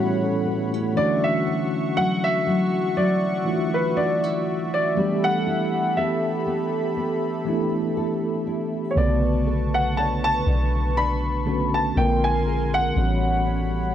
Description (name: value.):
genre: R&B.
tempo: 60 BPM.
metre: 4/4.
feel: swing 54% on 16ths.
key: unclear.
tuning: A4 = 440 Hz.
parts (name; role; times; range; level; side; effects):
mellow tine electric piano; accompaniment; 0.0-13.9 s; A2 to C#5; -26 LUFS; equal; medium stereo tremolo.
warm analog pad; sustained chords; 0.0-13.9 s; G3 to C#6; -28 LUFS; right 1 dB; chorus.
nylon-string guitar; arpeggios; 0.0-13.9 s; A2 to C#5; -28 LUFS; left 3 dB; analog delay.
warm baby grand piano; melody; 1.0-13.9 s; B4 to B5; -25 LUFS; right 1 dB; analog delay.
soft 808-style bass; bass; 9.0-13.9 s; A1 to B1; -24 LUFS; equal; none.
room: light reverb, small room reverb.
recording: dry, gritty hardware recording.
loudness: -20 LUFS.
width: side -10 dB against mid.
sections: 0.0-13.9 A section.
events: none.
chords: 0.0 A13; 1.0 Dmaj9; 5.0 G69; 9.0 Bm9; 12.0 A#9; 13.0 A13.